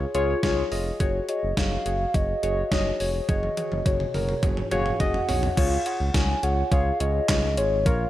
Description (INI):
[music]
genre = synth-pop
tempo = 105 BPM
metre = 4/4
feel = straight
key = Db major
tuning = A4 = 440 Hz
[part]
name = muted felt-like synth keys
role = accompaniment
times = 0.0-8.1 s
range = F4 to Eb5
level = -28 LUFS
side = left 2 dB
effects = chorus
[part]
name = smooth gliding synth bass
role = bass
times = 0.0-8.1 s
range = F1 to Db2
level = -27 LUFS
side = equal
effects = none
[part]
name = gated 80s digital drum machine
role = drums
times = 0.1-8.0 s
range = crash cymbal, handclaps, hi-hat, kick drum, snare drum, toms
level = -26 LUFS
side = equal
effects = gated reverb, gated reverb snare, overdrive
[part]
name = hollow clarinet-like synth lead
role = melody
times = 1.0-8.1 s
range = Db5 to Ab5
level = -28 LUFS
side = equal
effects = chorus, tape echo
[sound]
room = light reverb, digital ambience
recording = none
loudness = -22 LUFS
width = side -14 dB against mid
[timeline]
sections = 0.0-5.6 A section; 5.6-8.1 B section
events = drum fill 3.3-5.6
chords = 0.0 Db; 1.0 Gbsus2; 5.6 Db